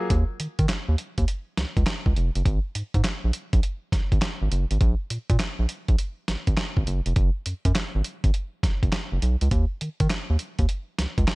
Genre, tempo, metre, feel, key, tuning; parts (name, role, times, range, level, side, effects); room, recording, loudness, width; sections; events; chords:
R&B, new jack swing; 102 BPM; 4/4; swing 66% on 16ths; A4 = 440 Hz
round analog bass; bass; 0.1-11.3 s; F1 to Eb3; -23 LUFS; equal
dusty soul sampler-style drum kit; drums; 0.1-11.3 s; handclaps, hi-hat, kick drum, snare drum; -24 LUFS; equal
little or no reverb; -22 LUFS; side -25 dB against mid
0.1-11.3 A section